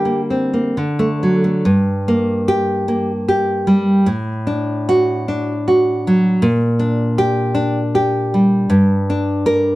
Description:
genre	romantic piece for solo classical guitar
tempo	76 BPM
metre	3/4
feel	uneven beats, rubato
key	G minor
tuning	A4 = 440 Hz
part	nylon-string guitar	solo	0.0-9.8 s	G2 to Bb4	-14 LUFS	equal	none
room	moderate studio reverb, RT60 0.6 s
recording	dark, warm production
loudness	-14 LUFS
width	side -17 dB against mid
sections	0.0-1.6 A section; 1.6-9.8 B section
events	none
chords	0.0 Gm/D; 0.8 D; 1.6 Gm; 4.1 D/A; 6.4 Gm/Bb; 8.7 Gm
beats	0.76 | 1.65 2.47 3.26 | 4.06 4.86 5.66 | 6.41 7.18 7.94 | 8.71 9.46

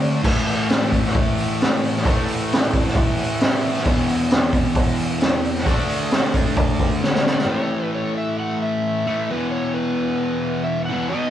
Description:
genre	garage rock duo or trio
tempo	133 BPM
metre	4/4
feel	straight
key	unclear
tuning	A4 = 439 Hz
part	fuzz guitar	riff	0.0-11.3 s	E2 to D4	-22 LUFS	left 1 dB	distortion
part	raw garage drum kit	drums	0.0-7.5 s	crash cymbal, hi-hat, kick drum, snare drum	-19 LUFS	equal	none
part	overdriven slide guitar	melody	7.0-11.3 s	B4 to F#5	-26 LUFS	equal	none
room	moderate large studio reverb, RT60 0.8 s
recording	band playing live in one room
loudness	-18 LUFS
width	side -11 dB against mid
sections	0.0-7.5 A section; 7.5-11.3 B section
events	drum fill 7.0-7.5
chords	0.3 A5; 3.9 E5; 5.7 D5; 7.5 A; 9.3 E5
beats	| 0.25 0.70 1.15 1.60 | 2.06 2.51 2.96 3.41 | 3.86 4.31 4.76 5.22 | 5.67 6.12 6.57 7.03 | 7.48 7.94 8.39 8.85 | 9.30 9.76 10.21 10.67 | 11.12

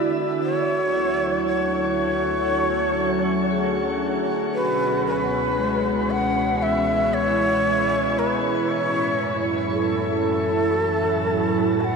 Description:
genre	ambient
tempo	58 BPM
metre	4/4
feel	straight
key	F# minor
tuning	A4 = 443 Hz
part	breathy shakuhachi	melody	0.0-12.0 s	A4 to A5	-23 LUFS	left 1 dB	ping-pong delay
part	soft additive organ-like pad	sustained chords	0.0-12.0 s	A2 to F#4	-24 LUFS	right 2 dB	ensemble chorus, built-in reverb
part	vibraphone with medium hard mallets	arpeggios	0.0-12.0 s	G#3 to G#4	-28 LUFS	equal	ping-pong delay
part	warm sub bass	bass	0.0-12.0 s	C#2 to F#2	-36 LUFS	equal	none
room	wet shimmer reverb, RT60 6.1 s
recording	cassette tape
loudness	-20 LUFS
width	side -5 dB against mid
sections	0.0-12.0 A section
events	fade-in on sub bass 0.0-12.0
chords	0.4 Dmaj7; 4.5 C#m7; 8.7 F#m7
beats	| 0.41 1.44 2.48 3.51 | 4.54 5.58 6.61 7.65 | 8.68 9.72 10.75 11.79

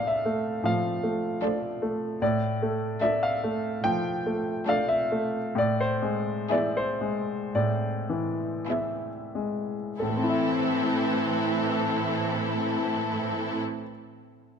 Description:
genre	classical, romantic movement for piano and orchestra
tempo	44-78 BPM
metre	4/4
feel	rubato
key	A minor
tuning	A4 = 440 Hz
part	clear grand piano	melody	0.0-14.6 s	A2 to G5	-26 LUFS	left 1 dB	none
part	warm symphonic violin section	second line	0.0-13.6 s	D4 to A4	-32 LUFS	left 5 dB	none
part	rich symphonic viola section	accompaniment	0.0-13.6 s	E3 to C4	-30 LUFS	right 2 dB	none
part	warm symphonic cello section	bass	0.6-13.6 s	A2	-33 LUFS	right 5 dB	none
room	moderate concert hall reverb, RT60 1.9 s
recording	close, detailed microphones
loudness	-25 LUFS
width	side -7 dB against mid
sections	0.0-10.0 A section; 10.0-14.6 B section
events	slowing down 0.6-10.0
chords	0.0 Dm/A; 5.6 E7/A; 10.0 Am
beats	0.64 1.42 | 2.21 3.01 3.83 4.67 | 5.55 6.50 7.53 8.68 | 9.99 11.24 12.48 13.74

